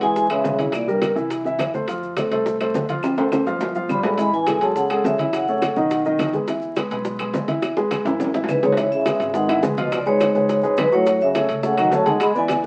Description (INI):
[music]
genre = Afro-Cuban jazz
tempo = 209 BPM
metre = 4/4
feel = straight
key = E major, C# minor from 8.8 s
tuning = A4 = 440 Hz
[part]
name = vibraphone with medium hard mallets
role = melody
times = 0.0-1.1, 3.9-6.0, 8.5-12.6 s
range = Bb4 to B5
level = -23 LUFS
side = equal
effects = none
[part]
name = breathy trombone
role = second line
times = 0.0-1.2, 3.9-5.9, 8.5-12.6 s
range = G2 to G#3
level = -27 LUFS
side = equal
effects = none
[part]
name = warm grand piano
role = accompaniment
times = 0.0-12.7 s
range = D#3 to G#5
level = -25 LUFS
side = equal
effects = none
[part]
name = upright bass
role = bass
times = 0.0-12.7 s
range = G1 to G#2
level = -38 LUFS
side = equal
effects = none
[part]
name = bongos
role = percussion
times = 0.0-12.7 s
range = none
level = -32 LUFS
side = equal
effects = none
[part]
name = congas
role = percussion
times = 0.0-12.7 s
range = none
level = -34 LUFS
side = equal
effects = none
[part]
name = maracas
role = percussion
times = 0.0-12.7 s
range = none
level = -51 LUFS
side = equal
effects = none
[part]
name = timbales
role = percussion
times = 0.0-12.6 s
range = none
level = -30 LUFS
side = equal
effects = none
[part]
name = claves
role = percussion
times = 0.3-12.6 s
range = none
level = -39 LUFS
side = equal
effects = none
[sound]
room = moderate studio reverb, RT60 0.8 s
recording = very old 78 rpm record, vinyl crackle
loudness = -20 LUFS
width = mono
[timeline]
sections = 0.0-8.8 A section; 8.8-12.7 B section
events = drum fill 3.0-4.2, 7.6-8.8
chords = 0.0 E6; 0.7 C7; 1.9 F; 3.0 Dm7; 3.6 G9; 4.2 Amaj7; 5.3 F#m7; 5.9 B; 6.5 E; 8.2 E6/G#; 8.8 C#m11; 9.9 C#7; 11.1 F#m9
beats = 0.16 0.45 | 0.73 1.02 1.31 1.59 | 1.88 2.17 2.46 2.75 | 3.03 3.32 3.61 3.90 | 4.18 4.47 4.76 5.04 | 5.33 5.62 5.91 6.19 | 6.48 6.77 7.05 7.34 | 7.63 7.91 8.20 8.49 | 8.77 9.06 9.35 9.63 | 9.92 10.21 10.49 10.78 | 11.06 11.35 11.64 11.92 | 12.21 12.50